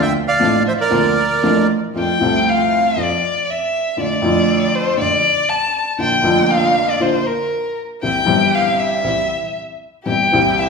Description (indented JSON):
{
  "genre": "tango",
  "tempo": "118 BPM",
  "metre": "4/4",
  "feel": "rubato",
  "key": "F major",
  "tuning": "A4 = 440 Hz",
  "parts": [
    { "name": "bandoneon", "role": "melody", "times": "0.0-1.7 s", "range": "Bb4 to G5", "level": "-16 LUFS", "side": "right 4 dB", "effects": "none" },
    { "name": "warm violin", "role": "second line", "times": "0.0-10.7 s", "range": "Bb4 to A5", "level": "-17 LUFS", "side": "left 2 dB", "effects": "none" },
    { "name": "warm baby grand piano", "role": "accompaniment", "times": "0.0-10.7 s", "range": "F1 to A4", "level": "-18 LUFS", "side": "left 1 dB", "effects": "none" },
    { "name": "rich chamber string section", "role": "stabs", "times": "0.0-10.7 s", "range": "F2 to G4", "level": "-25 LUFS", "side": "right 4 dB", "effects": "none" }
  ],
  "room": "wet large studio reverb, RT60 1.3 s",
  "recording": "band playing live in one room",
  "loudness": "-14 LUFS",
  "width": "side -4 dB against mid",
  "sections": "0.0-2.0 A section; 2.0-10.7 B section",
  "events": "violin solo 2.0-10.7",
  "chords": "0.0 Dm7; 2.0 F; 4.0 Dm/F; 6.0 Bb; 8.0 C"
}